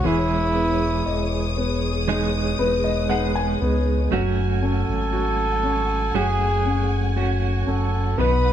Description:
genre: pop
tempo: 59 BPM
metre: 4/4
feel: straight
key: unclear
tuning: A4 = 440 Hz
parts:
  - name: mellow flugelhorn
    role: melody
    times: 0.0-8.5 s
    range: E4 to B4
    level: -24 LUFS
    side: right 1 dB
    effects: none
  - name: clear concert grand piano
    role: accompaniment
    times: 0.0-8.5 s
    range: E3 to G#5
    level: -26 LUFS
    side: left 2 dB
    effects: none
  - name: dark studio string section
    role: sustained chords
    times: 0.0-8.5 s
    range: G#4 to D#6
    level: -30 LUFS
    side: left 2 dB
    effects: none
  - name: direct-recorded clean electric guitar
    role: arpeggios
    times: 0.0-8.5 s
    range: B2 to B4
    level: -27 LUFS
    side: right 6 dB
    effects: tremolo
  - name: sub bass with octave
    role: bass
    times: 0.1-8.5 s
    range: E1 to C#2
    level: -24 LUFS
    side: left 1 dB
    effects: none
room: moderate large studio reverb, RT60 1.1 s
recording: band playing live in one room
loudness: -19 LUFS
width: side -10 dB against mid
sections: 0.0-8.5 A section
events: grand piano fill 2.1-4.1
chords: 0.0 Emaj7; 4.1 F#madd9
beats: | 0.05 1.07 2.08 3.10 | 4.12 5.13 6.15 7.17 | 8.19

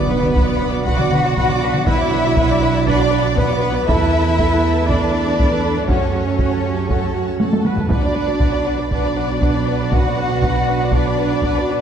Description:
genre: cinematic, epic orchestral film score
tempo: 119 BPM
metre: 4/4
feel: straight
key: B minor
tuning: A4 = 439 Hz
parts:
  - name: warm symphonic violin section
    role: melody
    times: 0.0-11.8 s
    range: B4 to F#5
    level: -24 LUFS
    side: left 5 dB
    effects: none
  - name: warm symphonic violin section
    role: second line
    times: 0.0-11.8 s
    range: F#4 to D6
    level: -26 LUFS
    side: left 2 dB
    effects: none
  - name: warm chamber viola section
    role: accompaniment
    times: 0.0-11.8 s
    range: D4 to D5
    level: -25 LUFS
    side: right 2 dB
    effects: none
  - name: dark French horn section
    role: sustained chords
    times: 0.0-11.8 s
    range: F#3 to F#4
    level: -28 LUFS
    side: left 2 dB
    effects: none
  - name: rich symphonic cello section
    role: bass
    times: 0.0-11.8 s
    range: B3 to F#4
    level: -21 LUFS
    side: right 2 dB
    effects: none
  - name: warm symphonic double bass section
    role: bass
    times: 0.0-11.8 s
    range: B1 to F#2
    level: -22 LUFS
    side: right 5 dB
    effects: none
  - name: timpani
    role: percussion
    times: 0.0-0.6 s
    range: B2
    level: -27 LUFS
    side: equal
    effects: none
  - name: impact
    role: sound effects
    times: 0.0-1.9 s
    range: none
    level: -31 LUFS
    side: equal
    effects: none
  - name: taiko ensemble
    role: drums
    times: 0.2-11.8 s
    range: none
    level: -20 LUFS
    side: equal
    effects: none
room: wet concert hall reverb, RT60 2.1 s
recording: dark, warm production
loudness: -15 LUFS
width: side -8 dB against mid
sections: 0.0-11.8 A section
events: impact 0.0-1.9; drum fill 7.4-7.9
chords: 0.0 Bm; 3.9 Esus4; 5.9 F#m; 7.9 Bm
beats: 0.36 0.87 1.37 | 1.87 2.37 2.88 3.38 | 3.88 4.38 4.88 5.39 | 5.89 6.39 6.90 7.40 | 7.90 8.41 8.91 9.41 | 9.91 10.42 10.92 11.42

